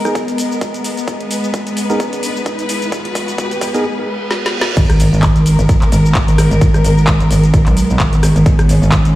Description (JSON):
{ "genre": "bass house", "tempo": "130 BPM", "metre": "4/4", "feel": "swing 56% on 16ths", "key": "G# minor", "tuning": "A4 = 440 Hz", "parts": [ { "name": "clear symphonic string section", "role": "sustained chords", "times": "0.0-9.2 s", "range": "G#3 to B4", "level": "-21 LUFS", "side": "left 2 dB", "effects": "sidechain pumping" }, { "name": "riser, reverse cymbal and impact", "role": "sound effects", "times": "0.2-6.6 s", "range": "none", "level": "-25 LUFS", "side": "equal", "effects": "none" }, { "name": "warbly tape-like pad", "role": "texture", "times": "0.0-3.8 s", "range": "B3 to A#5", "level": "-25 LUFS", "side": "left 2 dB", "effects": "chorus, built-in reverb, sidechain pumping" }, { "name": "percussive organ stab", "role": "stabs", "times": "0.1-3.8 s", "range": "B3 to A#4", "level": "-22 LUFS", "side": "right 1 dB", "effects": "wide subtle chorus, cassette tape, sidechain pumping, dub echo" }, { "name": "garage drum kit", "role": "drums", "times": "0.1-9.1 s", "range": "cabasa, crash cymbal, handclaps, hi-hat, rim click, snare drum", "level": "-21 LUFS", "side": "equal", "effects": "none" }, { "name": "electronic kick drum", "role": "drums", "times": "0.2-9.0 s", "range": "none", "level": "-14 LUFS", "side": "equal", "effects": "overdrive, high-pass filter on kick" }, { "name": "metallic wobble bass", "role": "bass", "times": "4.8-9.2 s", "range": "G#1 to B1", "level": "-11 LUFS", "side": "equal", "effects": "chorus, overdrive, sidechain pumping" } ], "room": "light reverb", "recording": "played on a big sound system in a bare room, stone room reverb", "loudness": "-11 LUFS", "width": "side -15 dB against mid", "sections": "0.0-4.8 A section; 4.8-9.2 B section", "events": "build-up 0.0-4.8; filter sweep on synth stab 0.0-4.8; riser 0.2-3.8; drum fill 1.1-3.8, 4.3-4.8; reverse cymbal 3.8-4.8; drop 4.8-9.2; impact 4.8-6.6", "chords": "0.0 G#madd9" }